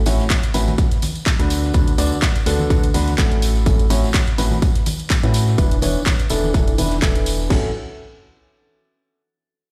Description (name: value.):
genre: piano house.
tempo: 125 BPM.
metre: 4/4.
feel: swing 55% on 16ths.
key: A major.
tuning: A4 = 438 Hz.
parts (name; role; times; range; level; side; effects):
organ-like FM bass; bass; 0.0-7.7 s; E1 to A2; -22 LUFS; equal; tube saturation, sidechain pumping.
warm upright piano; riff; 0.1-7.7 s; A2 to D5; -25 LUFS; equal; sidechain pumping, low-pass filter, digital delay.
house drum kit; drums; 0.1-7.4 s; handclaps, hi-hat; -28 LUFS; equal; none.
open jazz drum kit; drums; 0.1-7.5 s; hi-hat, snare drum; -40 LUFS; equal; none.
tambourine and congas; percussion; 0.1-7.5 s; none; -31 LUFS; equal; none.
house drum kit; drums; 0.3-7.6 s; crash cymbal, kick drum, snare drum; -20 LUFS; equal; none.
room: small room ambience.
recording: played on a big sound system in a bare room, large studio reverb.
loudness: -18 LUFS.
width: mono.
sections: 0.0-7.5 A section; 7.5-9.4 B section.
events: filter sweep on upright piano 0.0-7.5.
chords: 0.0 A6; 5.6 E7sus4; 7.5 A6.